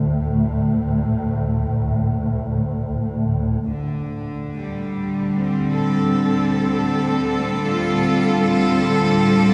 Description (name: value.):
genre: dark ambient drone.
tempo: free time.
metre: none.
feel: none.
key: D minor.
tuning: A4 = 440 Hz.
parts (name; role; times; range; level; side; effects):
swarming drone; drone; 0.0-9.5 s; D2 to A2; -25 LUFS; equal; built-in reverb.
clear chamber cello section; sustained chords; 3.6-9.5 s; D3 to A4; -20 LUFS; equal; none.
impact; percussion; 3.6-3.8 s; none; -44 LUFS; equal; none.
icy glass pad; texture; 4.6-9.5 s; none; barely audible; none; none.
room: wet cathedral reverb, RT60 5.8 s.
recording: small room ambience.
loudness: -20 LUFS.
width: mono.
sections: 0.0-3.6 A section; 3.6-9.5 B section.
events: none.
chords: 0.0 D5; 3.6 Dm.